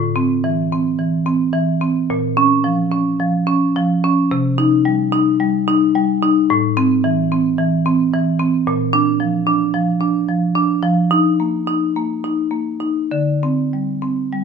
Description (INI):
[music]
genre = classical, contemporary piece for solo marimba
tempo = 109 BPM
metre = 4/4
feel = rubato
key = unclear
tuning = A4 = 440 Hz
[part]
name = marimba with medium hard mallets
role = solo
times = 0.0-14.4 s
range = A2 to Eb4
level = -15 LUFS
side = equal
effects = none
[sound]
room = light reverb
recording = none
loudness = -15 LUFS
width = side -6 dB against mid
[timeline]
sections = 0.0-14.4 A section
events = none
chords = 0.0 Am; 2.1 Bbm; 4.3 Cm; 6.5 Am; 8.7 Bb; 10.8 F7sus4; 13.1 D7sus4